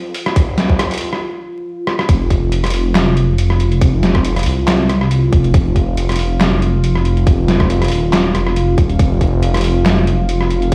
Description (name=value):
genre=deep dubstep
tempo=139 BPM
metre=4/4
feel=swing 54% on 16ths, half-time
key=unclear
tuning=A4 = 440 Hz
part: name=dark analog pad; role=sustained chords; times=0.0-10.7 s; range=F4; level=-25 LUFS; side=equal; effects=chorus, phaser, vintage 12-bit sampler grit
part: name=dark detuned saw bass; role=bass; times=0.0-10.7 s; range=Eb1 to F2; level=-18 LUFS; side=equal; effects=high-pass filter
part: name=trip hop sampler-style drum kit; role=drums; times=0.1-10.7 s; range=handclaps, hi-hat, rim click, snare drum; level=-21 LUFS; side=equal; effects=overdrive
part: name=electronic kick drum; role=drums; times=0.4-10.7 s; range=none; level=-15 LUFS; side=equal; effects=none
room=light reverb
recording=played on a big sound system in a bare room, stone room reverb, vinyl crackle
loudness=-15 LUFS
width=mono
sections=0.0-2.1 A section; 2.1-10.7 B section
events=build-up 0.0-2.1; break 1.2-2.1; drum fill 1.9; drop 2.1-10.7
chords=0.0 N.C.; 2.1 F5